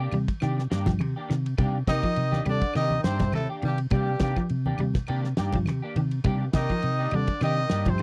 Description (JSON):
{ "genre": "afrobeat", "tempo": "103 BPM", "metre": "4/4", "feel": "swing 55% on 16ths", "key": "C minor", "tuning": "A4 = 440 Hz", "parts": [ { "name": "clean electric guitar", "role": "stabs", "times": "0.0-7.9 s", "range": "Eb3 to G4", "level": "-36 LUFS", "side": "equal", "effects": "ensemble chorus" }, { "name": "fingered electric bass", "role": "bass", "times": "0.0-8.0 s", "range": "G2 to C3", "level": "-30 LUFS", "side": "equal", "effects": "none" }, { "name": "semi-hollow electric guitar", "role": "arpeggios", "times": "0.1-8.0 s", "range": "Eb3 to G3", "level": "-32 LUFS", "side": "equal", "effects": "none" }, { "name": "damped 70s drum kit", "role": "drums", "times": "0.1-8.0 s", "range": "kick drum, ride cymbal, snare drum", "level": "-31 LUFS", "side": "equal", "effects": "none" }, { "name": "claves", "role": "percussion", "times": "0.1-8.0 s", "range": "none", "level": "-46 LUFS", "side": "equal", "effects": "none" }, { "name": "congas", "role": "percussion", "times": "0.1-8.0 s", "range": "none", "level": "-34 LUFS", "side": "equal", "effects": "none" }, { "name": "clear trumpet", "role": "melody", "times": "1.9-8.0 s", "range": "G4 to Eb5", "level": "-32 LUFS", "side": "equal", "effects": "none" }, { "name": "muted trombone section", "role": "second line", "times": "1.9-8.0 s", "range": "G2 to Eb3", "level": "-38 LUFS", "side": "equal", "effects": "none" }, { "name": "raspy tenor saxophone", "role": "second line", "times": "1.9-8.0 s", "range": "G3 to Eb4", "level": "-39 LUFS", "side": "equal", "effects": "none" } ], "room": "little or no reverb", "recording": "dry, close 1970s-style studio recording", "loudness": "-26 LUFS", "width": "mono", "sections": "0.0-8.0 A section", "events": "none", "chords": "0.0 Cm9" }